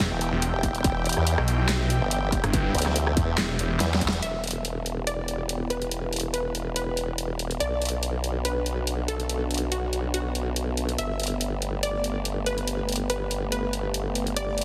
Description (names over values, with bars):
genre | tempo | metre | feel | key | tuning
heavy wobble dubstep | 142 BPM | 4/4 | swing 54% on 16ths, half-time | E minor | A4 = 439 Hz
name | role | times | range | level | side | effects
lush unison pad | sustained chords | 0.0-14.6 s | E3 to G5 | -35 LUFS | equal | chorus, sidechain pumping
snarling distorted saw bass | bass | 0.0-3.8 s | E1 to B1 | -27 LUFS | equal | distortion, overdrive
dubstep drum kit | drums | 0.0-14.6 s | handclaps, hi-hat, rim click, snare drum | -31 LUFS | equal | studio reverb
formant-sweep wobble bass | bass | 0.1-14.6 s | E1 to E2 | -30 LUFS | equal | chorus, overdrive
electronic kick drum | drums | 0.6-4.1 s | none | -30 LUFS | equal | distortion, studio reverb
unison pluck | melody | 4.2-14.6 s | F#4 to E5 | -34 LUFS | equal | digital delay
room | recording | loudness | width
light reverb | heavily compressed radio sound, multiband compression | -27 LUFS | mono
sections
0.0-4.2 A section; 4.2-14.6 B section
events
drop 0.0-4.2; drum fill 3.8-4.2; band accent 4.1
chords
0.0 Em; 7.6 Bm; 11.0 Gadd9